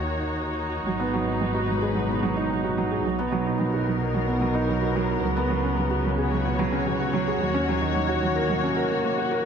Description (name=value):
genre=piano and strings electronica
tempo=110 BPM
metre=4/4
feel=straight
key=G# minor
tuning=A4 = 440 Hz
part: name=muted studio string section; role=sustained chords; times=0.0-9.5 s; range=B2 to C#5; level=-27 LUFS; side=left 3 dB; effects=none
part: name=dark studio double bass section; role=bass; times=0.0-8.5 s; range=G#1 to D#2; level=-30 LUFS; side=equal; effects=tube saturation
part: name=felt-muted upright piano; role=riff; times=0.9-9.5 s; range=F#3 to A#4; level=-25 LUFS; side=right 3 dB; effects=tape echo
room=wet recital hall reverb, RT60 1.3 s, small room ambience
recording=none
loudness=-22 LUFS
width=side -7 dB against mid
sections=0.0-9.5 A section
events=none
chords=0.0 D#m7; 0.9 G#m7; 3.0 Bmaj7; 5.2 C#7sus4; 7.4 D#m7